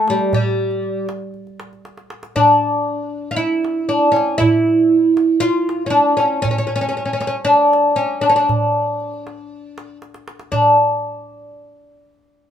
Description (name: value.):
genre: Arabic maqam ensemble.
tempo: 118 BPM.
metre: 4/4.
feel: straight.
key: D maqam nahawand.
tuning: A4 = 436 Hz.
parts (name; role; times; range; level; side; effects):
oud; melody; 0.0-10.8 s; G3 to F4; -15 LUFS; equal; none.
darbuka; percussion; 0.1-10.8 s; none; -24 LUFS; right 2 dB; none.
room: moderate studio ambience, RT60 0.5 s.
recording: band playing live in one room.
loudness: -14 LUFS.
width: side -9 dB against mid.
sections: 0.0-10.5 A section; 10.5-12.5 B section.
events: drum fill 1.9-2.4, 10.0-10.5.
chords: none.